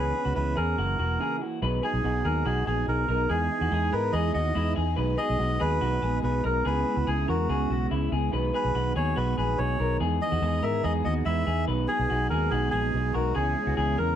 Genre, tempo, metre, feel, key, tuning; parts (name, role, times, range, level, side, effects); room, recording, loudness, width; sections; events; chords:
indie pop; 143 BPM; 4/4; straight; B major; A4 = 441 Hz
melodica; melody; 0.0-14.2 s; F#4 to E5; -29 LUFS; right 1 dB; slapback echo
electric guitar through a small old amp; accompaniment; 0.0-14.2 s; F#2 to G#4; -32 LUFS; right 7 dB
electric guitar through a small old amp; arpeggios; 0.0-14.2 s; E4 to B4; -32 LUFS; left 7 dB; slapback echo
vintage muted fingered electric bass; bass; 0.0-14.2 s; E1 to G#2; -28 LUFS; equal
ensemble organ-string; sustained chords; 1.6-14.2 s; C#3 to G#4; -35 LUFS; equal; ensemble chorus
moderate studio ambience, RT60 0.5 s; -24 LUFS; side -10 dB against mid
0.0-1.6 A section; 1.6-14.2 A section
break 1.2-1.6
0.0 C#m7; 0.8 F#7; 1.6 B6; 3.3 Emaj7; 5.0 B6; 6.6 C#m7; 8.3 B6; 10.0 Emaj7; 11.7 B6; 13.4 C#m7